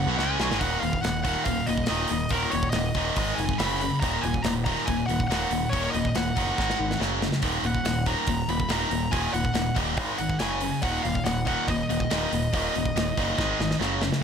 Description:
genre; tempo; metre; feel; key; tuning
heavy metal; 141 BPM; 4/4; straight; Eb minor; A4 = 439 Hz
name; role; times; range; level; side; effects
high-gain lead guitar; melody; 0.0-13.8 s; Bb4 to Cb6; -30 LUFS; equal; distortion
heavy high-gain guitar; riff; 0.0-14.2 s; Eb2 to Db4; -29 LUFS; left 13 dB; distortion
heavy high-gain guitar; riff; 0.0-14.2 s; Eb2 to Db4; -29 LUFS; right 12 dB; distortion
sludgy distorted guitar; riff; 0.0-0.6 s; Ab2 to Db4; -34 LUFS; equal; overdrive
growling picked electric bass; bass; 0.0-14.1 s; Eb1 to Db2; -31 LUFS; equal; overdrive
tight metal drum kit; drums; 0.2-14.2 s; hi-hat, kick drum, snare drum; -31 LUFS; equal; none
room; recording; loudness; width
light reverb; none; -23 LUFS; side -7 dB against mid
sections
0.6-14.2 A section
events
drum fill 0.2-0.6, 6.6-7.4, 13.4-14.2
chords
0.0 Gb5; 0.6 Eb5; 3.2 Ab5; 3.6 Gb5; 4.0 Ebm; 6.6 Ab5; 7.0 Gb5; 7.4 Ebm; 10.0 Ab5; 10.4 Gb5; 10.8 Ebm; 13.4 Ab5; 13.8 Gb5

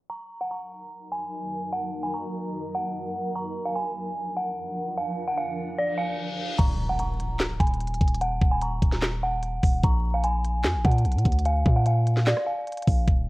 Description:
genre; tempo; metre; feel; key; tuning
hip hop, trap; 148 BPM; 4/4; half-time; Eb harmonic minor; A4 = 439 Hz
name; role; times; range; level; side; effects
dark detuned synth bell; melody; 0.1-13.0 s; D5 to Bb5; -29 LUFS; right 1 dB; chorus, low-pass filter
granular cloud pad; sustained chords; 1.0-6.6 s; F3 to Bb4; -34 LUFS; equal; built-in reverb
reverse cymbal and impact; sound effects; 5.9-8.2 s; none; -36 LUFS; left 1 dB; none
warm 808-style bass; bass; 6.6-13.3 s; D1 to Bb2; -24 LUFS; equal; none
trap drum kit; drums; 6.6-13.2 s; crash cymbal, handclaps, hi-hat, kick drum, rim click, snare drum; -23 LUFS; equal; vintage 12-bit sampler grit
room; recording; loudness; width
little or no reverb; worn, warbling old tape, cassette tape, vinyl crackle, warbly pitch drift, low-pass filter; -23 LUFS; side -21 dB against mid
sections
0.1-6.6 A section; 6.6-13.3 B section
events
filter sweep 0.1-6.6; reverse cymbal 5.9-6.6; impact 6.6-8.2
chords
0.1 Ebm; 3.3 Bb; 6.6 Ebm; 9.8 Bb5

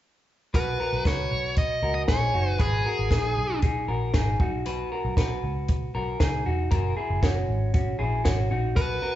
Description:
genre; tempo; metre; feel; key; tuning
jangly indie pop; 117 BPM; 4/4; straight; B major; A4 = 440 Hz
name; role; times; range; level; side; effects
electric guitar through a small old amp; arpeggios; 0.5-9.2 s; C#4 to B4; -29 LUFS; left 1 dB; none
vintage muted picked electric bass; bass; 0.5-9.0 s; E1 to C#2; -28 LUFS; equal; none
compact cocktail drum kit; drums; 0.5-8.9 s; hi-hat, kick drum, snare drum; -26 LUFS; equal; none
dark smooth lead guitar; melody; 0.6-3.6, 8.8-9.2 s; G#4 to D#5; -28 LUFS; right 1 dB; overdrive
room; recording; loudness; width
moderate large studio reverb, RT60 1.3 s; band playing live in one room, nothing above 7.8 kHz; -23 LUFS; side -13 dB against mid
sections
0.5-9.2 A section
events
none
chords
0.5 Badd9; 2.6 G#m; 4.4 Badd9; 6.7 F#

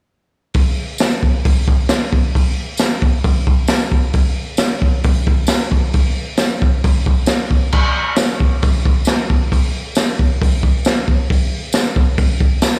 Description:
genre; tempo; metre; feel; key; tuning
rock; 134 BPM; 4/4; straight; none; none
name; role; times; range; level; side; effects
crunchy breakbeat drum kit; drums; 0.5-12.7 s; crash cymbal, hi-hat, kick drum, snare drum; -16 LUFS; equal; none
tambourine; percussion; 1.0-12.7 s; none; -30 LUFS; equal; none
room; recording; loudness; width
light reverb, studio ambience; live gig heard through the venue's PA, club reverb; -16 LUFS; mono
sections
0.5-12.8 A section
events
none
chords
none

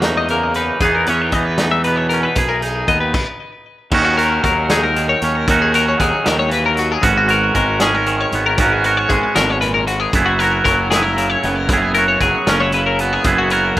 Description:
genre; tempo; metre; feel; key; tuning
math rock and midwest emo; 77 BPM (dotted quarters); 6/8; straight; unclear; A4 = 440 Hz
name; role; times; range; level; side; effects
twangy electric guitar; accompaniment; 0.0-13.8 s; E2 to G#4; -17 LUFS; right 4 dB; spring reverb
twelve-string electric guitar; arpeggios; 0.0-13.8 s; F#4 to E5; -18 LUFS; left 5 dB; digital delay
fuzz picked electric bass; bass; 0.0-13.8 s; F#1 to E2; -21 LUFS; equal; overdrive
loose indie drum kit; drums; 0.0-13.8 s; crash cymbal, hi-hat, kick drum, snare drum; -21 LUFS; equal; none
room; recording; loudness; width
small room ambience; rough home demo mix; -13 LUFS; side -14 dB against mid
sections
0.0-3.9 A section; 3.9-13.8 B section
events
stop 3.1-3.9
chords
0.0 F#13; 0.8 Emaj7; 3.9 D#m7; 7.0 G#m11; 10.1 F#9sus4

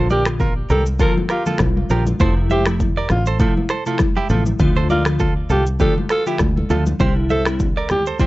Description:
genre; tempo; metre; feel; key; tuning
afrobeats; 100 BPM; 4/4; swing 55% on 16ths; F major; A4 = 441 Hz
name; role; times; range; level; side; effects
glassy digital keys; accompaniment; 0.0-8.3 s; C3 to F4; -22 LUFS; left 1 dB; chorus
direct-recorded clean electric guitar; riff; 0.0-8.3 s; D4 to E5; -25 LUFS; right 5 dB; none
fingered electric bass; bass; 0.0-8.2 s; F1 to D2; -20 LUFS; equal; none
breathy alto saxophone; melody; 0.1-8.0 s; F4 to Bb4; -22 LUFS; equal; none
afro-pop drum kit; drums; 0.1-8.3 s; finger snaps, kick drum, rim click, shaker; -20 LUFS; equal; none
congas; percussion; 0.1-8.1 s; none; -28 LUFS; left 1 dB; none
room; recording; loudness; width
light reverb; worn, warbling old tape, cassette tape, warbly pitch drift, nothing above 7.9 kHz; -15 LUFS; side -18 dB against mid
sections
0.0-8.3 A section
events
none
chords
0.0 Bb; 2.2 Fmaj7; 4.6 Cadd9

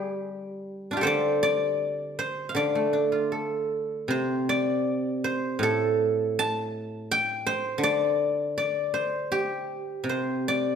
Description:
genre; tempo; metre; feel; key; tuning
chinese traditional, Chinese solo plucked strings; 76-84 BPM; 2/4; rubato; D yu mode; A4 = 440 Hz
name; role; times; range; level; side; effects
guzheng; solo; 0.0-10.8 s; A2 to A5; -24 LUFS; equal; none
room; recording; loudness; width
wet recital hall reverb, RT60 1.5 s; none; -24 LUFS; side -7 dB against mid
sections
0.0-4.1 A section; 4.1-10.8 B section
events
none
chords
none

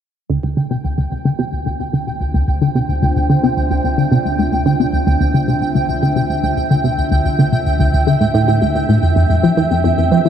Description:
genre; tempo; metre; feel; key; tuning
ambient, sequencer-driven space music; 110 BPM; 4/4; straight; D minor; A4 = 438 Hz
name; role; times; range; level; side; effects
sweeping resonant pad; sustained chords; 0.3-10.3 s; D3 to E5; -22 LUFS; right 1 dB; wide subtle chorus
tight sequenced synth; riff; 0.3-10.3 s; D2 to F3; -14 LUFS; equal; chorus, ping-pong delay
analog drone; bass; 1.9-10.3 s; D2 to F2; -32 LUFS; equal; none
pulsing gated texture; texture; 0.3-10.3 s; G5; -22 LUFS; right 3 dB; chorus, built-in reverb
room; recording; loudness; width
wet huge ambient reverb, RT60 7.8 s; dark, warm production; -13 LUFS; side -9 dB against mid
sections
0.3-10.3 A section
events
fade-in on analog synth pad 0.3-10.3; filter sweep on synth arpeggio sound 0.3-10.3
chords
0.3 Dm7; 9.0 Fmaj7(no3)

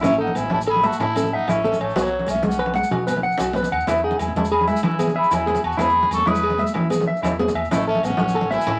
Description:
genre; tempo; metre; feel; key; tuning
highlife guitar band; 125 BPM (dotted quarters); 12/8; straight; E major; A4 = 442 Hz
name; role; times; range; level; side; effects
mellow hollow baroque flute; melody; 0.0-8.8 s; C#5 to D#6; -24 LUFS; equal; none
growling trumpet; second line; 0.0-8.8 s; F#3 to B4; -32 LUFS; equal; none
nylon-string guitar; accompaniment; 0.0-8.7 s; G#3 to C#4; -29 LUFS; equal; none
clean electric guitar; arpeggios; 0.0-8.8 s; E4 to F#5; -26 LUFS; equal; none
hollow-body short-scale fingered electric bass; bass; 0.0-8.8 s; A1 to E3; -32 LUFS; equal; none
agogo bells; percussion; 0.0-8.8 s; none; -35 LUFS; equal; none
congas; percussion; 0.0-8.8 s; none; -28 LUFS; equal; none
maracas; percussion; 0.0-8.7 s; none; -44 LUFS; equal; none
room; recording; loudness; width
wet studio reverb, RT60 0.6 s; vinyl crackle; -21 LUFS; mono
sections
0.0-8.8 A section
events
none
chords
0.0 A; 2.0 Bsus2; 3.9 E; 7.7 A

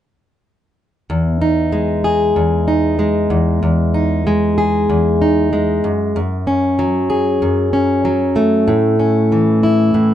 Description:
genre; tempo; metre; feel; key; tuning
pop; 95 BPM; 4/4; straight; E major; A4 = 438 Hz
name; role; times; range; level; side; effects
fingerpicked plugged-in steel-string acoustic guitar; accompaniment; 1.1-10.1 s; E2 to G#4; -13 LUFS; equal; none
room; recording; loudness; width
moderate studio ambience, RT60 0.5 s; nothing above 10.5 kHz; -13 LUFS; side -11 dB against mid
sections
1.1-10.1 A section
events
none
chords
1.1 Emaj7; 5.8 F#sus2; 8.7 A

